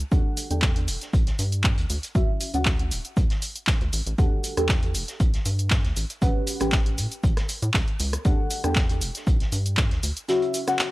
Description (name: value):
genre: deep house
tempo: 118 BPM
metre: 4/4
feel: swing 53% on 16ths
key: E dorian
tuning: A4 = 441 Hz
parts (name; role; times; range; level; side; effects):
- rubbery square bass; bass; 0.0-10.1 s; D1 to A2; -27 LUFS; equal; sidechain pumping
- punchy analog drum machine; drums; 0.0-10.9 s; handclaps, hi-hat, rim click, shaker; -28 LUFS; equal; none
- deep mellow chord stab; stabs; 0.1-10.9 s; C#4 to G5; -27 LUFS; left 1 dB; chorus, phaser, sidechain pumping, tape echo
- electronic kick drum; drums; 0.1-9.9 s; none; -22 LUFS; equal; none
- vintage drum kit; drums; 0.1-10.9 s; hi-hat, snare drum; -38 LUFS; equal; sidechain pumping on hats, high-pass filter on hats, high-pass filter on snare, high-pass filter on room
room: digital ambience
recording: dry, gritty hardware recording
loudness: -21 LUFS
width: side -19 dB against mid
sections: 0.0-10.9 A section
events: none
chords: 0.1 Em11; 2.1 Dmaj9; 4.2 Em11; 6.0 A13; 8.3 Em11; 10.3 C#madd11